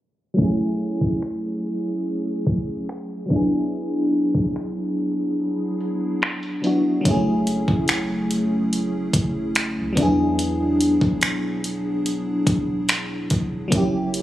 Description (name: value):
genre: contemporary R&B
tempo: 72 BPM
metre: 4/4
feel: straight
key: F# minor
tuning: A4 = 440 Hz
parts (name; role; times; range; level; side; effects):
- FM electric piano with soft pad layer; accompaniment; 0.3-14.2 s; F#3 to G#4; -21 LUFS; equal; chorus
- smooth R&B drum kit; drums; 0.4-14.2 s; finger snaps, hi-hat, kick drum; -22 LUFS; equal; none
- soft 808-style bass; bass; 7.1-14.2 s; E1 to E2; -31 LUFS; equal; none
room: light reverb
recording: recorded on a phone in the room, club reverb, compression, low-pass filter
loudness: -20 LUFS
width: side -14 dB against mid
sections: 0.4-7.1 A section; 7.1-14.2 B section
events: filter sweep 0.4-7.1; kick muted 5.4-7.1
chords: 0.4 F#m7; 3.3 E9; 7.1 F#m7; 10.0 E9; 13.7 F#7b9